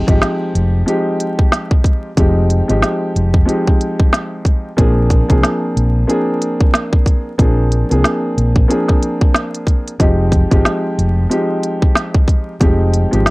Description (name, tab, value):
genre	hip hop, boom-bap hip-hop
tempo	92 BPM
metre	4/4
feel	swing 59% on 16ths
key	F dorian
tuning	A4 = 440 Hz
part	dark grand piano	accompaniment	0.0-13.3 s	F3 to Ab4	-17 LUFS	equal	cassette tape, high-pass filter, low-pass filter
part	fingered electric bass	bass	0.1-13.2 s	F1 to C2	-14 LUFS	equal	transformer saturation
part	organic electronic drum kit	drums	0.1-13.3 s	hi-hat, kick drum, snare drum	-13 LUFS	equal	vintage 12-bit sampler grit
room	little or no reverb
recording	dry, gritty hardware recording, vinyl crackle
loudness	-12 LUFS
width	side -23 dB against mid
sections	0.0-13.3 A section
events	none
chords	0.0 Fm9; 4.8 Bb9; 10.0 Fm9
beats	0.21 0.87 1.52 | 2.17 2.82 3.48 4.13 | 4.78 5.43 6.08 6.74 | 7.39 8.04 8.69 9.35 | 10.00 10.65 11.30 11.95 | 12.61 13.26